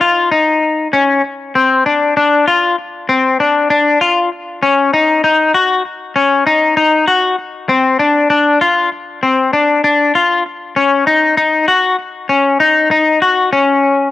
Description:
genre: progressive instrumental, progressive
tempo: 195 BPM (eighths)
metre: 5/8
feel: straight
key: unclear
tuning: A4 = 440 Hz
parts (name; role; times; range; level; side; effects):
- semi-hollow electric guitar; solo; 0.0-14.1 s; C4 to Gb4; -10 LUFS; left 3 dB; analog delay
room: moderate small room reverb, RT60 0.5 s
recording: home recording on cassette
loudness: -10 LUFS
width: side -14 dB against mid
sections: 0.0-1.2 A section; 1.2-13.5 B section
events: none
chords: none

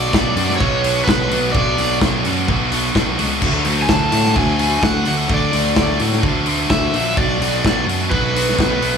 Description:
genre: indie rock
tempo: 128 BPM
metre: 4/4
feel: straight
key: unclear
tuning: A4 = 440 Hz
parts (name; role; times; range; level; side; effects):
- cranked stack guitar; melody; 0.0-9.0 s; B4 to A5; -21 LUFS; equal; overdrive, tape echo
- scooped high-gain guitar; riff; 0.0-9.0 s; B2 to F#4; -20 LUFS; right 1 dB; distortion
- fuzz picked electric bass; bass; 0.0-9.0 s; A#1 to A2; -21 LUFS; equal; overdrive
- loose indie drum kit; drums; 0.1-8.9 s; crash cymbal, hi-hat, kick drum, snare drum; -20 LUFS; equal; none
room: light reverb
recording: small room ambience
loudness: -14 LUFS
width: side -6 dB against mid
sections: 0.0-9.0 A section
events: none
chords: 0.0 Bm; 3.4 D; 7.2 Bm

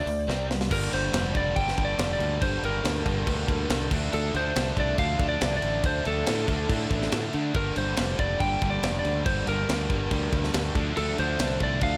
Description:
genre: hard rock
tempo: 140 BPM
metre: 4/4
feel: straight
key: G minor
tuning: A4 = 440 Hz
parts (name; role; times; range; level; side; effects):
- lightly driven lead guitar; melody; 0.0-12.0 s; A4 to G5; -32 LUFS; equal; analog delay
- distorted electric guitar; riff; 0.0-12.0 s; G2 to D4; -37 LUFS; equal; distortion
- overdriven electric guitar; riff; 0.0-12.0 s; G2 to D4; -37 LUFS; equal; none
- modern bright fingered electric bass; bass; 0.0-12.0 s; F1 to D3; -32 LUFS; equal; none
- tight metal drum kit; drums; 0.1-11.9 s; crash cymbal, hi-hat, kick drum, snare drum; -32 LUFS; equal; none
- hollow soft pad; sustained chords; 0.7-12.0 s; G3 to A5; -43 LUFS; equal; none
- sludgy distorted guitar; riff; 0.7-12.0 s; G2 to D4; -39 LUFS; equal; none
room: light reverb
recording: none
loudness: -26 LUFS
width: mono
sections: 0.7-12.0 A section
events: drum fill 0.3-0.7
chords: 0.3 C5; 0.7 Gm; 3.9 Dm; 7.5 Gm; 10.8 Dm

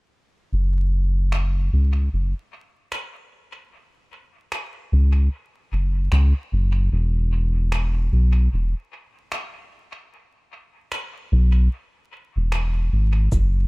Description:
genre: ambient dub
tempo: 75 BPM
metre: 4/4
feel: swing 59% on 16ths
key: unclear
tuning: A4 = 439 Hz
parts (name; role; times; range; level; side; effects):
- round analog bass; bass; 0.5-13.7 s; E1 to C#2; -18 LUFS; equal; none
- electronic finger snaps and cabasa; drums; 1.3-13.5 s; none; -33 LUFS; equal; dub echo
- electronic kick drum; drums; 13.3-13.5 s; none; -22 LUFS; equal; none
room: little or no reverb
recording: echo-heavy mix, vinyl crackle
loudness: -19 LUFS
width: side -27 dB against mid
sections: 0.5-13.3 A section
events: none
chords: none

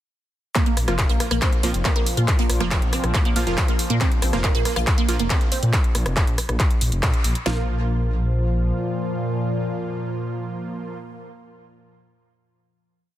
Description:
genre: driving peak-time techno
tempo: 139 BPM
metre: 4/4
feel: straight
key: unclear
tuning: A4 = 440 Hz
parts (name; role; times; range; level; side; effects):
- resonant blip pluck; riff; 0.6-7.7 s; Bb3 to F4; -27 LUFS; right 3 dB; phaser, wide subtle chorus, sidechain pumping, tape echo
- deep dark ambient pad; drone; 1.8-11.0 s; Bb2 to F3; -29 LUFS; equal; chorus, built-in reverb, sidechain pumping
- open jazz drum kit; drums; 0.6-5.6 s; hi-hat, shaker, snare drum; -43 LUFS; right 3 dB; none
- techno drum kit; drums; 0.6-7.6 s; kick drum, snare drum; -21 LUFS; equal; distortion, overdrive
- techno drum kit; drums; 0.6-7.4 s; handclaps, hi-hat, rim click; -26 LUFS; equal; overdrive, sidechain pumping on hats
- dark detuned saw bass; bass; 0.8-8.7 s; F1 to Bb2; -23 LUFS; equal; sidechain pumping
- supersaw stab; stabs; 0.9-11.0 s; F3 to F4; -30 LUFS; right 2 dB; sidechain pumping, digital delay
room: light reverb, small room ambience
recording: dense, heavily limited modern master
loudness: -19 LUFS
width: side -13 dB against mid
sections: 0.6-7.5 drop; 7.5-10.9 final chord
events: drop 0.6-7.5; band accent 7.0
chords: 0.6 Bb5

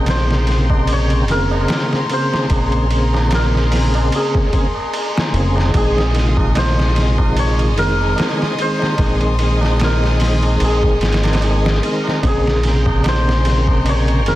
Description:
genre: trip hop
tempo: 74 BPM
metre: 4/4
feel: swing 55% on 16ths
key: Bb dorian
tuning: A4 = 440 Hz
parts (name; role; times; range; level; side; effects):
- santur; melody; 0.0-14.4 s; Ab4 to Db5; -23 LUFS; left 1 dB; vintage 12-bit sampler grit, tape echo
- tonewheel organ; accompaniment; 0.0-14.4 s; C3 to G5; -21 LUFS; equal; overdrive, chorus vibrato, slow rotary speaker, harmonic tremolo, tape echo
- warm studio violin section; sustained chords; 0.0-14.4 s; Ab4 to Eb6; -27 LUFS; left 2 dB; none
- deep dub fingered electric bass; bass; 0.0-14.4 s; F1 to Bb1; -17 LUFS; equal; none
- trip hop sampler-style drum kit; drums; 0.1-14.4 s; hi-hat, kick drum, ride cymbal, snare drum; -20 LUFS; equal; overdrive, small room ambience
- tabla; percussion; 0.1-14.2 s; none; -28 LUFS; right 3 dB; none
room: studio ambience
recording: dense, heavily limited modern master, vinyl crackle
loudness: -14 LUFS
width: side -15 dB against mid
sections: 0.0-14.4 A section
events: none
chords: 0.0 Bbm9; 5.8 Ab; 12.2 Bbm9

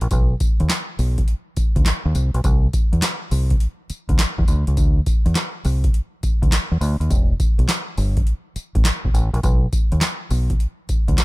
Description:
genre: R&B, new jack swing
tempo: 103 BPM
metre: 4/4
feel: swing 67% on 16ths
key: E minor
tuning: A4 = 439 Hz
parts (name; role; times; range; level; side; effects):
- deep dub fingered electric bass; bass; 0.0-11.2 s; E1 to E2; -19 LUFS; equal; none
- booming analog drum machine; drums; 0.0-11.2 s; handclaps, hi-hat, kick drum, snare drum, tambourine; -18 LUFS; equal; none
room: little or no reverb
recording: none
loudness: -17 LUFS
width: side -20 dB against mid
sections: 0.0-11.2 A section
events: none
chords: none

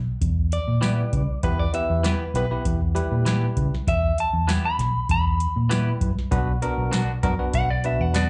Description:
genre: straight-eighth soul blues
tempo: 98 BPM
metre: 4/4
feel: straight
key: unclear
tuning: A4 = 440 Hz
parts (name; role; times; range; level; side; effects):
- vintage muted fingered electric bass; bass; 0.0-8.3 s; B1 to C#3; -25 LUFS; equal; none
- soft vintage rhythm box; drums; 0.2-8.3 s; hi-hat, kick drum, snare drum, tambourine; -29 LUFS; equal; overdrive
- clean electric guitar; second line; 0.5-8.3 s; B4 to B5; -29 LUFS; equal; plate reverb, slapback echo
- bell-like tine electric piano; accompaniment; 0.8-8.3 s; G3 to B4; -31 LUFS; equal; plate reverb, slapback echo
- semi-hollow electric guitar; stabs; 0.8-8.3 s; B2 to G4; -31 LUFS; equal; lush chorus, slapback echo
room: little or no reverb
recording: live gig heard through the venue's PA, club reverb, nothing above 10.4 kHz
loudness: -23 LUFS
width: mono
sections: 0.0-8.3 A section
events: clean electric guitar solo 0.0-8.3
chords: 0.0 Em; 6.3 Bm

